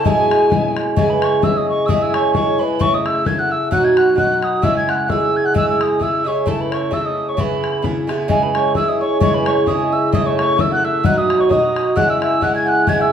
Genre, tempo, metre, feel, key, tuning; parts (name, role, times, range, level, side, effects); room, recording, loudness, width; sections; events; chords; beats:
celtic folk, Celtic polka; 131 BPM; 2/4; swing 55% on 8ths; C# minor; A4 = 441 Hz
mellow hollow wooden whistle; melody; 0.0-13.1 s; G#5 to G#6; -20 LUFS; equal
hammered dulcimer; second line; 0.0-3.1, 8.3-13.1 s; G#4 to G#5; -27 LUFS; right 4 dB
mellow hollow wooden flute; second line; 0.0-13.1 s; G#4 to G#5; -23 LUFS; left 3 dB
Irish bouzouki; accompaniment; 0.0-13.1 s; B2 to A4; -17 LUFS; right 2 dB
bodhran; percussion; 0.1-13.0 s; -22 LUFS; left 4 dB
wet large studio reverb, RT60 0.8 s; band playing live in one room; -14 LUFS; side -8 dB against mid
1.0-8.3 A section; 8.3-13.1 A section
0.1 E; 1.0 C#m; 2.8 A/C#; 3.7 B; 4.6 C#m; 6.5 A/C#; 7.4 C#m7; 8.3 C#m; 10.1 A/C#; 11.0 B; 12.0 C#m
| 0.05 0.51 | 0.97 1.43 | 1.89 2.34 | 2.80 3.26 | 3.72 4.18 | 4.63 5.09 | 5.55 6.01 | 6.47 6.93 | 7.38 7.84 | 8.30 8.76 | 9.22 9.68 | 10.13 10.59 | 11.05 11.50 | 11.96 12.42 | 12.88